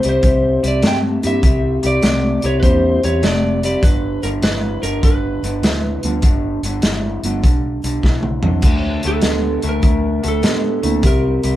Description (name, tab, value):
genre	electric blues shuffle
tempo	100 BPM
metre	4/4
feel	swing 67% on 8ths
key	G mixolydian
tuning	A4 = 440 Hz
part	lightly driven lead guitar	melody	0.0-11.6 s	A4 to G5	-21 LUFS	right 1 dB	none
part	electric guitar through a small old amp	riff	0.0-11.6 s	G2 to B3	-20 LUFS	left 2 dB	none
part	vintage muted fingered electric bass	bass	0.0-11.6 s	F1 to A2	-22 LUFS	equal	none
part	crunchy breakbeat drum kit	drums	0.0-11.5 s	crash cymbal, hi-hat, kick drum, snare drum, toms	-17 LUFS	equal	none
part	mellow reed electric piano	accompaniment	1.2-11.0 s	F#3 to F4	-22 LUFS	right 3 dB	fast tremolo
room	moderate small room ambience, RT60 0.5 s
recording	band playing live in one room, lossy compression artefacts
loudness	-14 LUFS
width	side -14 dB against mid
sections	0.0-11.6 A section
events	drum fill 8.0-8.6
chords	0.0 C9; 3.8 G; 8.6 D5; 11.0 C7(no3)